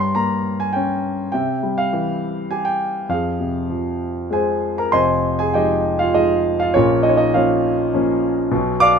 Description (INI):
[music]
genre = classical, lyrical solo piano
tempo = 101 BPM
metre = 3/4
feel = rubato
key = F minor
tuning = A4 = 440 Hz
[part]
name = warm concert grand piano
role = solo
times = 0.0-9.0 s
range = F1 to D6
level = -16 LUFS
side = equal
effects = none
[sound]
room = light reverb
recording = none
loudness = -17 LUFS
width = side -6 dB against mid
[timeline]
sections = 0.0-4.9 A section; 4.9-9.0 A section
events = none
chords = 0.0 Gdim; 1.3 C; 3.1 Fm; 4.9 Fm7; 6.8 Bbm